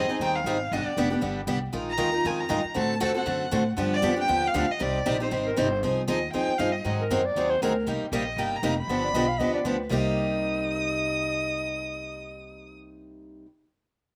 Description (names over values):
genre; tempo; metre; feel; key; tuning
acoustic string swing (jazz manouche); 235 BPM; 4/4; swing 55% on 8ths; C minor; A4 = 440 Hz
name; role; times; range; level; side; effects
warm violin; melody; 0.0-12.7 s; C5 to Eb6; -32 LUFS; equal; slapback echo
picked steel-string acoustic guitar; accompaniment; 0.0-13.5 s; C3 to Bb4; -30 LUFS; equal; slapback echo
upright bass; bass; 0.0-13.4 s; F1 to A2; -34 LUFS; equal; none
mellow clarinet; second line; 5.5-12.7 s; Bb4 to F5; -32 LUFS; equal; none
room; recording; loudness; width
little or no reverb; recorded outdoors, with no room sound; -26 LUFS; mono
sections
0.0-5.8 A section; 5.8-9.9 B section; 9.9-12.0 C section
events
none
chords
0.0 Abmaj7; 0.7 G; 1.7 Bb7sus4; 2.8 D7; 3.8 G7; 4.8 Cm; 5.8 Fm9; 6.8 Ab9; 7.9 Cm7; 8.9 G7b13; 9.9 Cm7